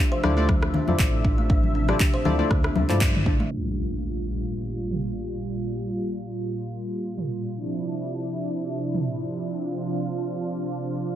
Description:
afro house; 119 BPM; 4/4; swing 54% on 16ths; D minor; A4 = 439 Hz
warm analog pad; sustained chords; 0.0-11.2 s; Bb2 to E5; -29 LUFS; right 1 dB; chorus, sidechain pumping
kalimba; arpeggios; 0.0-3.5 s; A3 to C5; -30 LUFS; right 1 dB; sidechain pumping, digital delay
deep mellow chord stab; stabs; 0.2-3.5 s; E4 to D5; -29 LUFS; left 3 dB; chorus, sidechain pumping, digital delay
dark detuned saw bass; bass; 0.2-3.4 s; A1 to G2; -25 LUFS; equal; sidechain pumping
deep house drum kit; drums; 0.2-9.0 s; crash cymbal, handclaps, rim click, toms; -29 LUFS; right 1 dB
congas; percussion; 0.2-3.2 s; -28 LUFS; left 4 dB
electronic kick drum; drums; 0.5-3.4 s; -22 LUFS; equal
impact; sound effects; 3.5-5.5 s; -33 LUFS; equal
little or no reverb; low-pass filter; -23 LUFS; side -11 dB against mid
0.0-3.5 A section; 3.5-11.2 B section
drum fill 2.5-3.5; band accent 3.0; impact 3.5-5.5; filter sweep 3.5-11.2
0.0 Dm9; 3.5 Gm7; 7.5 Dm9
0.49 0.99 | 1.50 2.00 2.50 3.01 | 3.51 4.02 4.52 5.03 | 5.53 6.03 6.54 7.04 | 7.55 8.05 8.55 9.06 | 9.56 10.07 10.57 11.08

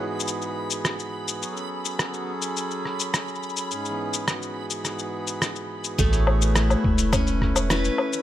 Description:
folktronica; 105 BPM; 4/4; straight; A major; A4 = 440 Hz
hand-pumped harmonium; sustained chords; 0.0-8.2 s; G#2 to C#5; -30 LUFS; right 1 dB; low-pass filter
backwards swelling texture; texture; 0.0-6.0 s; B5; -37 LUFS; right 2 dB; built-in reverb
lo-fi sampler-style drum kit; drums; 0.2-8.2 s; hi-hat, rim click, shaker, woodblock; -27 LUFS; left 2 dB
picked steel-string acoustic guitar; arpeggios; 6.0-8.2 s; A3 to B4; -25 LUFS; left 2 dB; tape echo
warm sub bass; bass; 6.0-7.9 s; E1 to A1; -23 LUFS; equal
electronic kick drum; drums; 6.0-7.5 s; -24 LUFS; equal
light reverb; -23 LUFS; side -12 dB against mid
0.0-6.0 A section; 6.0-8.2 B section
0.0 E/G#; 1.4 F#m; 3.7 E/G#; 6.0 Aadd9
0.28 0.85 | 1.42 1.99 2.56 3.13 | 3.70 4.28 4.85 5.42 | 5.99 6.56 7.13 7.70

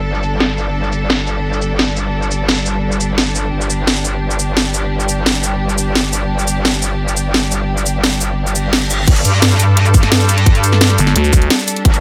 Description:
dark technical drum and bass; 173 BPM; 4/4; straight; A4 = 440 Hz
rich symphonic string section; sustained chords; 0.0-12.0 s; G3 to Bb4; -24 LUFS; equal; sidechain pumping
metallic wobble bass; bass; 0.0-12.0 s; G1 to G2; -19 LUFS; equal; chorus, tube saturation, sidechain pumping
drum and bass drum kit; drums; 0.1-12.0 s; cabasa, crash cymbal, hi-hat, snare drum; -18 LUFS; equal; overdrive, low-pass filter on perc, low-pass filter on hats, low-pass filter on snare, low-pass filter on cymbals
reverse cymbal; sound effects; 8.5-9.1 s; -28 LUFS; equal
electronic kick drum; drums; 9.1-11.9 s; -13 LUFS; equal
growling FM bass; bass; 11.0-11.5 s; G1 to D2; -15 LUFS; equal
light reverb; dense, heavily limited modern master; -15 LUFS; mono
0.0-9.1 A section; 9.1-12.0 B section
reverse cymbal 8.5-9.1; drop 9.1-12.0
0.0 Gsus2
0.06 0.41 | 0.75 1.10 1.45 1.79 | 2.14 2.49 2.83 3.18 | 3.53 3.87 4.22 4.57 | 4.91 5.26 5.61 5.95 | 6.30 6.65 7.00 7.34 | 7.69 8.04 8.38 8.73 | 9.07 9.42 9.77 10.12 | 10.46 10.81 11.16 11.50 | 11.85

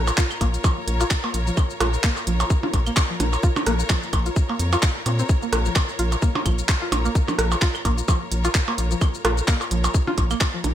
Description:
minimal techno; 129 BPM; 4/4; swing 56% on 16ths; Bb minor; A4 = 440 Hz
rubbery square bass; bass; 0.0-10.7 s; Bb1 to Bb2; -23 LUFS; equal; sidechain pumping
clear studio string section; texture; 0.0-10.7 s; F4 to Bb5; -31 LUFS; left 1 dB; sidechain pumping
garage drum kit; drums; 0.1-10.7 s; handclaps, hi-hat, shaker; -27 LUFS; equal; gated reverb
electronic percussion blips, claves and rim click; percussion; 0.1-10.7 s; -26 LUFS; right 2 dB; gated reverb, ping-pong delay
string-like resonator pluck; riff; 0.2-10.6 s; F3 to F4; -29 LUFS; equal; chorus, sidechain pumping, ping-pong delay
electronic kick drum; drums; 0.2-10.5 s; -21 LUFS; equal
light reverb; bright 1980s-style digital production; -19 LUFS; side -11 dB against mid
0.0-10.7 A section
filter sweep on synth pluck 0.0-10.7
0.0 Bbm
0.18 0.64 1.11 | 1.57 2.04 2.50 2.97 | 3.43 3.90 4.36 4.83 | 5.29 5.76 6.22 6.69 | 7.15 7.62 8.08 8.55 | 9.01 9.48 9.94 10.41

